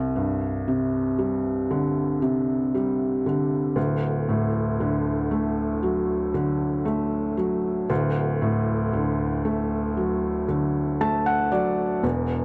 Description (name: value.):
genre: pop.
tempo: 58 BPM.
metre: 4/4.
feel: straight.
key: D major.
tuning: A4 = 439 Hz.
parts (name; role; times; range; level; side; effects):
felt-muted upright piano; solo; 0.0-12.4 s; D1 to A5; -24 LUFS; equal; none.
room: little or no reverb.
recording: dry, close 1970s-style studio recording.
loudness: -24 LUFS.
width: mono.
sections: 0.0-12.4 A section.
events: felt piano fill 10.5-12.0.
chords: 0.0 Csus2; 3.8 D.